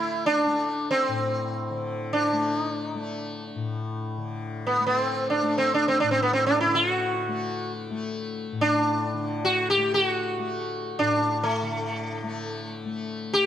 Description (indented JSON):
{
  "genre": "indian classical, Hindustani",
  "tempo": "free time",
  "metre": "none",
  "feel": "none",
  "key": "unclear",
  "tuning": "A4 = 440 Hz",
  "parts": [
    { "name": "sitar", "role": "melody", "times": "0.0-13.5 s", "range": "A3 to G4", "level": "-23 LUFS", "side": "right 1 dB", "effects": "none" },
    { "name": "tanpura", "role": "drone", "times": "0.0-13.5 s", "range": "A2 to A3", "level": "-32 LUFS", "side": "left 4 dB", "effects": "none" }
  ],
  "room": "light reverb",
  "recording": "close, detailed microphones",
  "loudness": "-23 LUFS",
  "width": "side -10 dB against mid",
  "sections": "0.0-13.5 A section",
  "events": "none",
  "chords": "none"
}